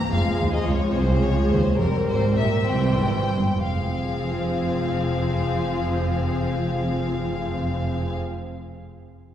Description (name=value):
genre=quick classical-period movement for symphony orchestra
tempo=59-74 BPM (dotted quarters)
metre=6/8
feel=rubato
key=F minor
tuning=A4 = 437 Hz
part: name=rich chamber violin section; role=melody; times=0.0-8.2 s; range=Bb4 to Bb5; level=-30 LUFS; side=left 4 dB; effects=none
part: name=warm chamber violin section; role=second line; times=0.0-8.2 s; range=C4 to C5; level=-30 LUFS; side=left 2 dB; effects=none
part: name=rich studio viola section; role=accompaniment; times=0.0-8.2 s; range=E3 to C4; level=-28 LUFS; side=equal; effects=none
part: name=warm chamber cello section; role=bass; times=0.1-8.2 s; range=C2 to C3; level=-27 LUFS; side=right 2 dB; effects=none
part: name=warm chamber double bass section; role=bass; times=0.1-8.1 s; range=F1 to Eb2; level=-26 LUFS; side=right 1 dB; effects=none
room=wet concert hall reverb, RT60 2.5 s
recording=heard from further back in the room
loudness=-21 LUFS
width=side -10 dB against mid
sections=0.0-3.7 A section; 3.7-7.5 B section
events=slowing down 0.0-3.7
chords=0.1 Fm; 1.8 C7; 3.7 Fm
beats=| 0.13 0.94 | 1.79 2.68 | 3.65 4.60 | 5.56 6.52